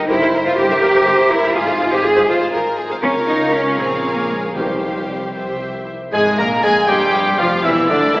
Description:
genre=classical, dramatic, fast romantic movement for symphony orchestra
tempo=76-83 BPM (dotted quarters)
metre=6/8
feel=rubato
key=F minor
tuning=A4 = 440 Hz
part: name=warm symphonic violin section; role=melody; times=0.0-8.2 s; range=Ab4 to Bb5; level=-25 LUFS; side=left 1 dB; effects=none
part: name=rich chamber violin section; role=second line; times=0.0-8.2 s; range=D4 to C5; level=-22 LUFS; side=equal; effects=none
part: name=rich studio viola section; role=accompaniment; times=0.0-8.2 s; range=D3 to Db5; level=-22 LUFS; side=equal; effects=none
part: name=concert harp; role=arpeggios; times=0.0-8.2 s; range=F2 to Bb5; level=-28 LUFS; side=left 1 dB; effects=none
part: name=rich studio double bass section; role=bass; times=0.0-8.2 s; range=E1 to D2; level=-29 LUFS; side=equal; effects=none
part: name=rich symphonic cello section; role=bass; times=0.0-8.2 s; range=D2 to Ab4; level=-18 LUFS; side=equal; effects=none
part: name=timpani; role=percussion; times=4.6-5.3 s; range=C3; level=-28 LUFS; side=equal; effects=none
part: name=bright clarinet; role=second line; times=6.1-8.2 s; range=D4 to Bb4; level=-22 LUFS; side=equal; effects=none
part: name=warm oboe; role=second line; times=6.1-8.2 s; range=D5 to Bb5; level=-22 LUFS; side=equal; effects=none
part: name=warm bassoon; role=accompaniment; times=6.1-8.2 s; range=D3 to Bb3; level=-22 LUFS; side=equal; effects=none
part: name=mellow French horn section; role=sustained chords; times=6.1-8.2 s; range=D3 to Bb3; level=-25 LUFS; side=equal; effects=none
part: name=clear trumpet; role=stabs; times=6.1-8.2 s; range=D4 to Bb4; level=-21 LUFS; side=equal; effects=none
part: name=silver concert flute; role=second line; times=6.9-8.2 s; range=C6 to E6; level=-22 LUFS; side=equal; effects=none
room=wet concert hall reverb, RT60 2.1 s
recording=heard from further back in the room, AM radio sound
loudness=-14 LUFS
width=side -22 dB against mid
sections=0.0-6.1 A section; 6.1-8.2 B section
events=none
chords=0.1 C7/G; 1.6 Fm/Ab; 3.0 Bbm/Db; 3.8 Bbm; 4.6 Csus4; 5.3 C; 6.1 Fm/Ab; 7.6 Edim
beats=| 0.10 0.82 | 1.55 2.29 | 3.03 3.78 | 4.56 5.34 | 6.12 6.88 | 7.64

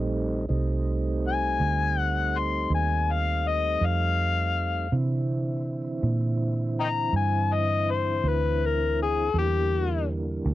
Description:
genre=slow blues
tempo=54 BPM (dotted quarters)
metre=12/8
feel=straight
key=unclear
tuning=A4 = 439 Hz
part: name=tonewheel organ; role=sustained chords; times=0.0-10.5 s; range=D3 to E4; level=-31 LUFS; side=right 2 dB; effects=slow rotary speaker, cassette tape
part: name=vintage muted fingered electric bass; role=bass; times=0.0-10.5 s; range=Bb1 to C3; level=-26 LUFS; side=right 2 dB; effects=none
part: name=overdriven harmonica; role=melody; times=1.3-10.1 s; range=G4 to C6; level=-26 LUFS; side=left 6 dB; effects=cassette tape
room=little or no reverb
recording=home recording on cassette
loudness=-23 LUFS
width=side -14 dB against mid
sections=0.0-10.5 A section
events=harmonica solo 0.0-10.5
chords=0.0 F9; 4.9 C9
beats=| 0.50 1.60 2.71 3.82 | 4.92 6.03 7.13 8.24 | 9.34 10.45

